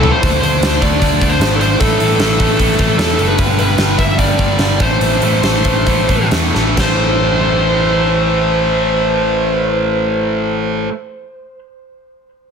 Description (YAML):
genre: hard rock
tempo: 128-152 BPM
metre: 4/4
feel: straight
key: A minor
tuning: A4 = 438 Hz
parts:
  - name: high-gain lead guitar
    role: melody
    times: 0.0-10.9 s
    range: A4 to E5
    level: -18 LUFS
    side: right 1 dB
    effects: distortion, analog delay
  - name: distorted electric guitar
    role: riff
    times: 0.0-10.9 s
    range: G2 to D4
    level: -20 LUFS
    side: left 13 dB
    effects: overdrive
  - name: tight distorted guitar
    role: riff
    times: 0.0-10.9 s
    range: G2 to D4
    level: -20 LUFS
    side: right 11 dB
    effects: distortion
  - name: picked electric bass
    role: bass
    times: 0.0-10.9 s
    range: F#1 to E2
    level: -18 LUFS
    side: equal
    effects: none
  - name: huge arena drum kit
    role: drums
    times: 0.0-6.9 s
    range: crash cymbal, hi-hat, kick drum, snare drum, toms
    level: -17 LUFS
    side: equal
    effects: none
room: light reverb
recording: none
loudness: -11 LUFS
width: side -6 dB against mid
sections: 0.2-6.8 A section; 6.8-10.5 B section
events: drum fill 0.0, 6.5; slowing down 3.4-6.8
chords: 0.2 D5; 1.8 A5; 3.4 G; 4.8 Am